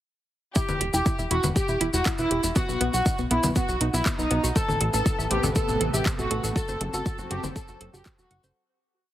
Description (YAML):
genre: melodic techno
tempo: 120 BPM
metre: 4/4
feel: straight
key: E harmonic minor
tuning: A4 = 439 Hz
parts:
  - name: expressive synth lead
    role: melody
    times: 0.6-8.4 s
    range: D#4 to A4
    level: -29 LUFS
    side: equal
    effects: lush chorus, sidechain pumping, tape echo
  - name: warm chamber violin section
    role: second line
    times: 0.6-8.4 s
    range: D#4 to A4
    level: -33 LUFS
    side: equal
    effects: sidechain pumping, dub echo
  - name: warbly dusty pluck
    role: arpeggios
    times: 0.6-8.5 s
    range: B3 to F#6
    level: -32 LUFS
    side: right 1 dB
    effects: chorus, sidechain pumping, dub echo
  - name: electronic kick drum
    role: drums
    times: 0.6-8.2 s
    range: none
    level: -26 LUFS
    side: equal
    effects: none
  - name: maracas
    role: percussion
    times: 0.6-8.5 s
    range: none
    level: -33 LUFS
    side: left 1 dB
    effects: none
  - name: plucky analog bass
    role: bass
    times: 0.7-8.5 s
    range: E1 to B1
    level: -28 LUFS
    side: equal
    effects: sidechain pumping
  - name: house drum kit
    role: drums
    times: 0.7-8.4 s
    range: congas, handclaps, hi-hat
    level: -30 LUFS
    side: left 1 dB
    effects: none
  - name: lush unison pad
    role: sustained chords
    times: 4.9-8.5 s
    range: C3 to A4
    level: -34 LUFS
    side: right 2 dB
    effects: chorus, phaser, sidechain pumping
room: little or no reverb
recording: heavily compressed radio sound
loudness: -22 LUFS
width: side -13 dB against mid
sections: 0.6-8.6 drop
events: drop 0.6-8.6; fade-out 5.9-8.6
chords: 0.6 Em; 2.6 B; 4.6 Amadd9; 6.6 F#dim